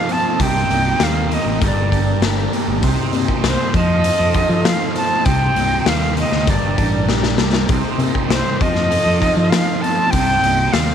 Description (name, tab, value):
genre	psychedelic rock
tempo	99 BPM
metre	4/4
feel	straight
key	C dorian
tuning	A4 = 440 Hz
part	bright concert flute	melody	0.0-10.9 s	C5 to A5	-20 LUFS	right 1 dB	tape echo
part	combo organ	sustained chords	0.0-10.9 s	A3 to C5	-27 LUFS	right 12 dB	none
part	fuzz guitar	riff	0.0-10.9 s	G2 to A4	-20 LUFS	right 1 dB	distortion, phaser
part	raw garage drum kit	drums	0.1-10.9 s	hi-hat, kick drum, snare drum	-20 LUFS	left 4 dB	none
part	fingered electric bass	bass	0.4-10.9 s	G1 to F3	-20 LUFS	equal	none
room	light reverb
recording	1960s-style stereo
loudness	-14 LUFS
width	side -8 dB against mid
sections	0.0-10.9 A section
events	drum fill 7.1-7.7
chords	0.4 Cm7; 1.6 Gmadd9; 2.8 Cm7; 3.7 F7; 5.3 Cm7; 6.5 Gmadd9; 7.7 Cm7; 8.6 F7; 10.1 Cm7